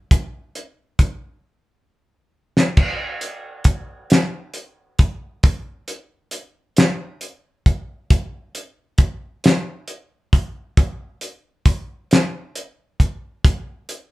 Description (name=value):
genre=R&B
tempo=45 BPM (dotted quarters)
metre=6/8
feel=straight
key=none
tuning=none
part: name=cloth-damped thuddy drum kit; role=drums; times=0.1-14.1 s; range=crash cymbal, hi-hat, kick drum, snare drum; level=-16 LUFS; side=equal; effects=none
room=moderate studio reverb, RT60 0.5 s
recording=band playing live in one room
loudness=-18 LUFS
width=side -19 dB against mid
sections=0.0-2.8 A section; 2.8-14.1 B section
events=drum fill 1.4-2.8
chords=none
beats=| 0.11 1.44 | 2.77 4.11 | 5.44 6.78 | 8.11 9.44 | 10.78 12.11 | 13.44